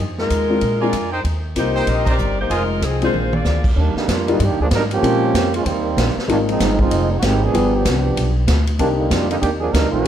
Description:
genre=jazz, big band swing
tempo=191 BPM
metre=4/4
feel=swing 61% on 8ths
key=Eb major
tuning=A4 = 440 Hz
part: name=upright bass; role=bass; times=0.0-10.1 s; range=F1 to Bb2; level=-20 LUFS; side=equal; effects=none
part: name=mellow saxophone section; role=melody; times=0.2-3.7 s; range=F3 to Eb5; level=-21 LUFS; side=left 2 dB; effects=none
part: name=swinging big-band drum kit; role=drums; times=0.2-10.1 s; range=crash cymbal, hi-hat, kick drum, ride cymbal, snare drum, toms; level=-23 LUFS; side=equal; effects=none
part: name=warm grand piano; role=accompaniment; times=0.5-10.1 s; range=G3 to G4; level=-22 LUFS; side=left 4 dB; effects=none
part: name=clear trumpet section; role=stabs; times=0.8-2.6 s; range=Eb4 to Bb5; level=-25 LUFS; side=right 2 dB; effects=none
part: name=clear trombone section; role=second line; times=3.8-10.1 s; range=D3 to Bb4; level=-20 LUFS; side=right 4 dB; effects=none
room=light reverb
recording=none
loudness=-15 LUFS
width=side -10 dB against mid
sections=0.0-3.8 A section; 3.8-10.1 B section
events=band accent 2.0; drum fill 3.1-3.5; trombone section solo 3.8-10.1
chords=0.0 Fm7; 0.6 Bb7; 1.2 Eb6; 2.5 Fm7; 3.1 Bb7; 3.8 Ebmaj7; 5.0 Bbm7; 5.7 Eb; 6.3 Ab6; 7.5 G7; 8.8 Cm9

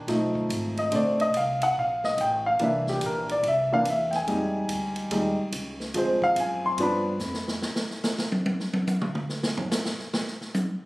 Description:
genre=jazz, big band swing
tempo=143 BPM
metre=4/4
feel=swing 66% on 8ths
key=C minor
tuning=A4 = 440 Hz
part: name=clear concert grand piano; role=accompaniment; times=0.0-7.5 s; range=D3 to C6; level=-24 LUFS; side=equal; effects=none
part: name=upright bass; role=bass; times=0.0-7.6 s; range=Ab1 to G2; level=-35 LUFS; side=equal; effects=none
part: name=swinging big-band drum kit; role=drums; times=0.1-10.7 s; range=hi-hat, kick drum, ride cymbal, snare drum, toms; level=-30 LUFS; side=equal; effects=none
room=moderate recital hall reverb, RT60 1.6 s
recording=recorded on a phone in the room, studio reverb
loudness=-24 LUFS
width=side -20 dB against mid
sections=0.0-7.6 A section; 7.6-10.9 A section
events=grand piano solo 0.0-7.6; drum fill 7.2-7.6; drum solo 7.6-10.9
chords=0.1 B7#11; 0.9 Bbmaj7; 2.6 C7; 4.3 Fm7; 5.9 Dm7b5; 6.8 G7; 7.6 N.C.

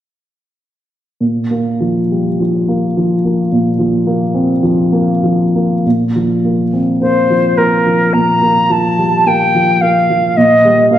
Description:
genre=classical, romantic duo for flute and grand piano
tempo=47-57 BPM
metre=4/4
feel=rubato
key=unclear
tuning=A4 = 439 Hz
part: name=dark baby grand piano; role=accompaniment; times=1.2-11.0 s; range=Bb2 to C4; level=-12 LUFS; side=equal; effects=none
part: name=silver concert flute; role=melody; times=7.0-11.0 s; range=Bb4 to Bb5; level=-11 LUFS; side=equal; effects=none
room=wet recital hall reverb, RT60 1.4 s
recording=recorded in a church or concert hall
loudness=-11 LUFS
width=side -11 dB against mid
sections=1.2-5.8 A section; 5.8-11.0 B section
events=none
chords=1.2 Bb5; 10.4 Eb/Bb

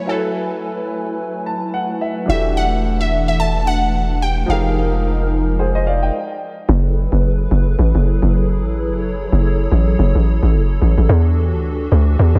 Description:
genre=amapiano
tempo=109 BPM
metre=4/4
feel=swing 58% on 16ths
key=unclear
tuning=A4 = 440 Hz
part: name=glassy wavetable pluck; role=melody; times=0.0-5.0 s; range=A4 to A5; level=-24 LUFS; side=equal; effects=chorus, analog delay
part: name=clear grand piano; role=accompaniment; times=0.0-6.3 s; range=E3 to A5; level=-26 LUFS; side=equal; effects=none
part: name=hollow soft pad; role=sustained chords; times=0.0-12.4 s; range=E3 to G#5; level=-26 LUFS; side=equal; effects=ensemble chorus
part: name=punchy sub bass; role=bass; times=2.3-6.1 s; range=E1 to F1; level=-21 LUFS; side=equal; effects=none
part: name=hollow log drum bass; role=bass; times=6.7-12.4 s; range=F#1 to E2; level=-16 LUFS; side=equal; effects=none
room=moderate lush hall reverb, RT60 3.2 s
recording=dreamy mix soaked in reverb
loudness=-17 LUFS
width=mono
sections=0.0-6.7 A section; 6.7-12.4 B section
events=grand piano fill 1.2-2.3; stop 6.1-6.7; drop 6.7-12.4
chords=0.0 F#m11; 2.3 Em11; 4.5 Fm11; 6.7 F#m11; 11.1 Em11

